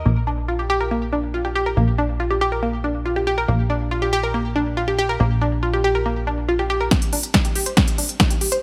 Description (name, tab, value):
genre	uplifting trance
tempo	140 BPM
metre	4/4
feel	straight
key	unclear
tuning	A4 = 441 Hz
part	plucky analog bass	bass	0.0-6.9 s	Bb1	-25 LUFS	equal	sidechain pumping
part	analog pluck	arpeggios	0.1-8.6 s	Bb3 to C5	-24 LUFS	equal	chorus, sidechain pumping, tape echo
part	big-room dance drum kit	drums	6.9-8.6 s	hi-hat, snare drum	-23 LUFS	equal	overdrive, sidechain pumping on hats
part	electronic kick drum	drums	6.9-8.3 s	none	-21 LUFS	equal	overdrive
room	light reverb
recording	none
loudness	-21 LUFS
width	mono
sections	0.0-6.9 A section; 6.9-8.6 B section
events	build-up 6.9-8.6; drum fill 6.9-8.6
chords	0.1 N.C.; 6.9 Cmadd9